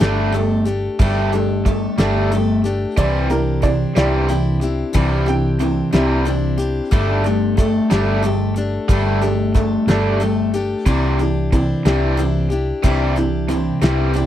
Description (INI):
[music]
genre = folk rock and heartland rock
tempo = 61 BPM (dotted quarters)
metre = 6/8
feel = straight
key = unclear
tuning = A4 = 440 Hz
[part]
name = picked steel-string acoustic guitar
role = accompaniment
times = 0.0-14.3 s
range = G2 to A4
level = -22 LUFS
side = left 4 dB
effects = none
[part]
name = overdriven electric guitar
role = riff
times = 0.0-14.3 s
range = C3 to D4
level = -20 LUFS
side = equal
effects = none
[part]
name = hollow-body short-scale fingered electric bass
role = bass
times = 0.0-14.3 s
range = G1 to C2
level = -20 LUFS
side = equal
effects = none
[part]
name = cloth-damped thuddy drum kit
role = drums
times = 0.0-14.3 s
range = hi-hat, kick drum, snare drum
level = -16 LUFS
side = equal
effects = none
[part]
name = warm upright piano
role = second line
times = 3.0-5.9 s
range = Bb4 to G5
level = -25 LUFS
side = right 4 dB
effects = none
[sound]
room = little or no reverb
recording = dry, close 1970s-style studio recording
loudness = -15 LUFS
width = side -11 dB against mid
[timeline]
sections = 0.0-14.3 A section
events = none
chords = 0.0 Gsus2; 3.0 Cadd9; 6.9 Gsus2; 10.9 Cadd9